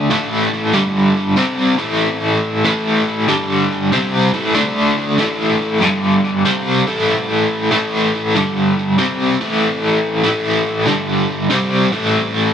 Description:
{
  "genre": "rock",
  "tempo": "95 BPM",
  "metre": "4/4",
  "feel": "swing 66% on 8ths",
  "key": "unclear",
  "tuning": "A4 = 436 Hz",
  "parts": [
    { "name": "overdriven electric guitar", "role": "solo", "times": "0.0-12.5 s", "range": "G2 to D4", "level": "-14 LUFS", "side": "equal", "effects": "tremolo, digital delay" }
  ],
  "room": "moderate club reverb, RT60 0.5 s",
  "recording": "none",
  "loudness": "-14 LUFS",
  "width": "side -8 dB against mid",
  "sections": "0.0-5.2 A section; 5.2-12.5 B section",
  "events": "none",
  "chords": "0.1 A5; 0.7 G5; 1.4 A5; 3.3 G5; 3.9 A5; 4.6 D5; 5.2 A5; 5.8 G5; 6.5 A5; 8.4 G5; 9.0 A5; 10.9 G5; 11.5 A5",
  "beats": "| 0.11 0.75 1.38 2.02 | 2.65 3.29 3.92 4.56 | 5.19 5.83 6.46 7.09 | 7.72 8.36 8.99 9.62 | 10.25 10.88 11.51 12.14"
}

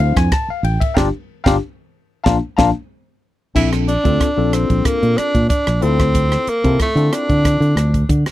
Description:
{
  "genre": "electric jazz fusion",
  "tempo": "93 BPM",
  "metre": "4/4",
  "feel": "straight",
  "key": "Bb lydian",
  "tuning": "A4 = 439 Hz",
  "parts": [
    { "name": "barky tine electric piano", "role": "accompaniment", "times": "0.0-7.9 s", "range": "F3 to Bb5", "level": "-20 LUFS", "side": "left 5 dB", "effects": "phaser" },
    { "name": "fingered electric bass", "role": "bass", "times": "0.0-8.3 s", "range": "G1 to D3", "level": "-16 LUFS", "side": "equal", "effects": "none" },
    { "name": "crisp fusion drum kit", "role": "drums", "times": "0.0-8.3 s", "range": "crash cymbal, hi-hat, kick drum, ride cymbal, rim click, snare drum", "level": "-19 LUFS", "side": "right 1 dB", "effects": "none" },
    { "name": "bright tenor saxophone", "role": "melody", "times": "3.6-8.1 s", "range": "A3 to E4", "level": "-19 LUFS", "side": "right 1 dB", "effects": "none" }
  ],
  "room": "little or no reverb",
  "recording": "dry, close 1970s-style studio recording",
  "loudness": "-14 LUFS",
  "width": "side -14 dB against mid",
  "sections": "0.0-3.6 A section; 3.6-8.3 B section",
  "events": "band accent 1.0-3.6",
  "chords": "0.0 Bbmaj9#11 (rootless); 1.0 Gm7; 2.3 Bbmaj7; 5.8 Dm7",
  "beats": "0.32 | 0.96 1.61 2.26 2.91 | 3.56 4.21 4.85 5.50 | 6.15 6.80 7.45 8.10"
}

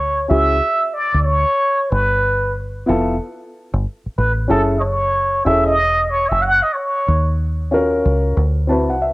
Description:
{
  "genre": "hip hop",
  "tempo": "93 BPM",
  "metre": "4/4",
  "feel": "swing 62% on 16ths",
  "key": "unclear",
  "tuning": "A4 = 440 Hz",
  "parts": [
    { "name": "trumpet with plunger mute", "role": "melody", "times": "0.0-7.4 s", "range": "A4 to F#5", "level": "-16 LUFS", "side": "equal", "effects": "cassette tape" },
    { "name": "deep dub fingered electric bass", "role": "bass", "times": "0.0-9.1 s", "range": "E1 to D#2", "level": "-19 LUFS", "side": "equal", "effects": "none" },
    { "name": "dark upright piano", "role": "accompaniment", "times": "0.3-9.1 s", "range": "B3 to A5", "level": "-18 LUFS", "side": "left 1 dB", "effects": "cassette tape" }
  ],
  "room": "moderate spring reverb, RT60 2.0 s",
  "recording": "home recording on cassette",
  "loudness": "-15 LUFS",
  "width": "side -20 dB against mid",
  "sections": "0.0-9.1 A section",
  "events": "upright piano fill 8.4-9.1",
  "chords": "0.0 Dmaj9#11; 1.9 G9; 4.5 F#m9; 7.1 D#m9; 8.4 D13",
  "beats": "0.63 1.27 | 1.92 2.56 3.21 3.85 | 4.50 5.14 5.79 6.43 | 7.08 7.72 8.37 9.01"
}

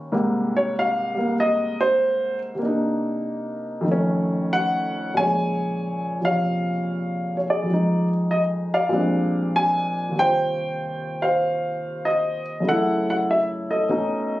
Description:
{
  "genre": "solo jazz",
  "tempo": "96 BPM",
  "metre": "4/4",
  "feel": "swing 67% on 8ths, rubato",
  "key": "Bb minor",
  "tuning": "A4 = 441 Hz",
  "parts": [
    { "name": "warm baby grand piano", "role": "solo", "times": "0.0-14.4 s", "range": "Eb2 to Ab5", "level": "-20 LUFS", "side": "equal", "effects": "none" }
  ],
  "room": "light reverb",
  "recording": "recorded on a phone in the room, club reverb",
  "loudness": "-20 LUFS",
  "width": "side -16 dB against mid",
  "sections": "0.0-5.2 A section; 5.2-14.4 B section",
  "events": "grand piano solo 0.0-5.2",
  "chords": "0.1 Abmaj9; 2.6 Cm9; 3.9 F7b13; 5.2 Bbm7; 7.7 Fm7; 8.9 Bb13; 10.2 Eb69; 12.7 Gbm7; 13.9 B9",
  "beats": "| 0.13 0.75 1.37 2.00 | 2.62 3.24 3.87 4.52 | 5.17 5.80 6.43 7.06 | 7.68 8.31 8.93 9.55 | 10.17 10.79 11.41 12.03 | 12.65 13.27 13.90"
}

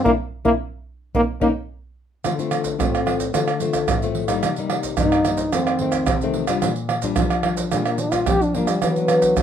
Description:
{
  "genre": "samba and choro",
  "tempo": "110 BPM",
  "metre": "4/4",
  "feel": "straight",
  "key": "D minor",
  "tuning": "A4 = 440 Hz",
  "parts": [
    { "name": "mellow trombone", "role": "melody", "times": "0.0-9.4 s", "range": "F#3 to G4", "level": "-22 LUFS", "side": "equal", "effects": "none" },
    { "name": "nylon-string guitar", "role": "accompaniment", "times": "0.0-9.4 s", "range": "F2 to G4", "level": "-22 LUFS", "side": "left 4 dB", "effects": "none" },
    { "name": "surdo, maracas, pandeiro and tamborim", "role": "percussion", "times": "0.1-9.4 s", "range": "none", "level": "-23 LUFS", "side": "right 5 dB", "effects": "none" }
  ],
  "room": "moderate studio ambience, RT60 0.5 s",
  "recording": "minimal, uncompressed stereo recording",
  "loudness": "-19 LUFS",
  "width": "side -9 dB against mid",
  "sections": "0.0-2.2 A section; 2.2-9.4 B section",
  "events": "band accent 0.1-2.2; trombone solo 2.2-9.4",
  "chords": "0.1 Bb; 1.1 Eb5; 2.2 Dm7; 4.4 Cm7; 5.5 F7; 6.6 Bb6; 8.8 E7(no3)",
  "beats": "| 0.05 0.60 1.15 1.69 | 2.24 2.79 3.34 3.88 | 4.43 4.98 5.53 6.08 | 6.62 7.17 7.72 8.27 | 8.81 9.36"
}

